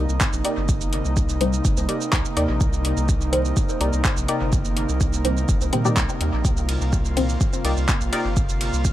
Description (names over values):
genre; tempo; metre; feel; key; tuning
dub techno; 125 BPM; 4/4; straight; unclear; A4 = 439 Hz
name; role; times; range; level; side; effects
airy breathy pad; sustained chords; 0.0-8.9 s; C3 to F4; -27 LUFS; right 1 dB; chorus, sidechain pumping
filtered dub chord stab; riff; 0.0-8.2 s; Eb4 to D5; -30 LUFS; left 2 dB; chorus, sidechain pumping, dub echo
round analog bass; bass; 0.0-8.9 s; G1 to Eb2; -24 LUFS; equal; sidechain pumping
deep house drum kit; drums; 0.1-8.9 s; handclaps, hi-hat, ride cymbal, shaker; -28 LUFS; right 1 dB; dub echo
electronic kick drum; drums; 0.2-8.9 s; none; -22 LUFS; equal; none
filtered dub chord stab; stabs; 1.4-7.4 s; Bb2 to C4; -27 LUFS; left 1 dB; phaser, sidechain pumping, dub echo
room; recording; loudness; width
little or no reverb; vinyl crackle; -19 LUFS; side -13 dB against mid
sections
0.0-8.9 A section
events
none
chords
0.0 Cm7